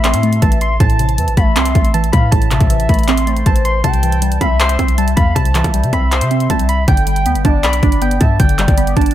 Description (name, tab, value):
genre	hip hop, trap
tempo	158 BPM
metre	4/4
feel	half-time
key	A minor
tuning	A4 = 438 Hz
part	soft electric-piano-like synth keys	melody	0.0-9.1 s	G5 to C6	-20 LUFS	right 2 dB	chorus, low-pass filter
part	gliding portamento lead	second line	0.0-9.1 s	C5 to A5	-23 LUFS	left 4 dB	chorus, tape echo
part	glassy wavetable pluck	accompaniment	0.0-9.1 s	A2 to D5	-19 LUFS	right 1 dB	chorus, low-pass filter
part	warm 808-style bass	bass	0.0-9.1 s	G1 to C3	-16 LUFS	equal	none
part	trap drum kit	drums	0.0-9.1 s	handclaps, hi-hat, kick drum	-15 LUFS	equal	none
part	downlifter	sound effects	0.0-0.8 s	none	-42 LUFS	left 2 dB	none
room	little or no reverb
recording	none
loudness	-11 LUFS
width	side -12 dB against mid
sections	0.0-9.1 A section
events	none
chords	0.0 Am; 3.8 C; 6.9 G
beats	0.04 0.42 | 0.80 1.18 1.56 1.94 | 2.32 2.70 3.08 3.46 | 3.84 4.22 4.60 4.98 | 5.36 5.74 6.12 6.50 | 6.88 7.26 7.64 8.02 | 8.40 8.78